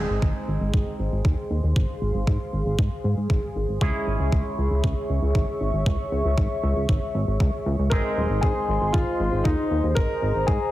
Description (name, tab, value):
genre	italo disco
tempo	117 BPM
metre	4/4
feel	straight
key	Ab major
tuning	A4 = 439 Hz
part	warm analog pad	sustained chords	0.0-10.7 s	Ab4 to Db6	-29 LUFS	equal	chorus
part	electric guitar with an envelope filter	stabs	0.0-10.7 s	Ab3 to Ab4	-34 LUFS	right 2 dB	wide subtle chorus, digital delay
part	chorused synth bass	bass	0.0-10.6 s	Eb1 to Ab2	-25 LUFS	equal	none
part	electronic kick drum	drums	0.2-10.6 s	none	-24 LUFS	equal	none
part	warm concert grand piano	melody	7.9-10.7 s	Eb4 to Bb4	-25 LUFS	left 2 dB	ping-pong delay
room	light reverb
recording	heavily compressed radio sound, multiband compression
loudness	-21 LUFS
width	side -15 dB against mid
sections	0.0-10.7 A section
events	filter sweep on analog synth pad 0.0-10.7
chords	0.0 Ab; 3.8 Dbm; 7.9 Ab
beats	0.22 0.73 1.25 | 1.76 2.27 2.79 3.30 | 3.81 4.33 4.84 5.35 | 5.86 6.38 6.89 7.40 | 7.92 8.43 8.94 9.45 | 9.97 10.48